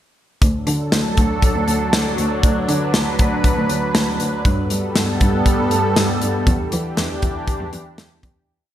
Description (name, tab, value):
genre	synth-pop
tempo	119 BPM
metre	4/4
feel	straight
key	D major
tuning	A4 = 440 Hz
part	lush unison pad	sustained chords	0.7-8.5 s	E3 to B4	-21 LUFS	right 1 dB	chorus, phaser
part	warm cello	bass	0.4-8.3 s	D2 to G3	-22 LUFS	equal	none
part	modern studio drum kit	drums	0.4-8.3 s	hi-hat, kick drum, snare drum	-19 LUFS	equal	none
room	moderate lush hall reverb, RT60 1.9 s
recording	bright 1980s-style digital production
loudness	-16 LUFS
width	side -12 dB against mid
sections	0.4-8.5 verse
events	fade-out 6.5-8.5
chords	0.4 D; 4.5 Gadd9; 6.5 Em7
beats	| 0.42 0.92 1.43 1.93 | 2.44 2.94 3.44 3.95 | 4.45 4.96 5.46 5.96 | 6.47 6.97 7.48 7.98